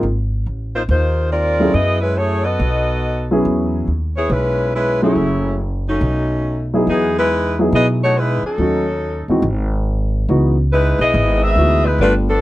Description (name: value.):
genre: jazz, big band swing.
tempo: 140 BPM.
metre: 4/4.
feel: swing 65% on 8ths.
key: E major.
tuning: A4 = 440 Hz.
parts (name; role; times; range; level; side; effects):
dark baby grand piano; accompaniment; 0.0-12.3 s; E3 to G#4; -18 LUFS; equal; none.
upright bass; bass; 0.0-12.4 s; F#1 to B2; -19 LUFS; equal; none.
warm saxophone section; melody; 0.8-12.4 s; E3 to E5; -17 LUFS; left 1 dB; none.
room: light reverb.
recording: dry, close 1970s-style studio recording.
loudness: -15 LUFS.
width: side -16 dB against mid.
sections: 0.0-6.9 A section; 6.9-12.4 B section.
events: none.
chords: 0.0 G#69; 1.8 F#m9; 2.6 B7; 3.5 E6; 5.2 F#m7; 6.0 B13; 6.9 Emaj7; 8.6 D#m7b5; 9.4 N.C.; 10.3 C#m11.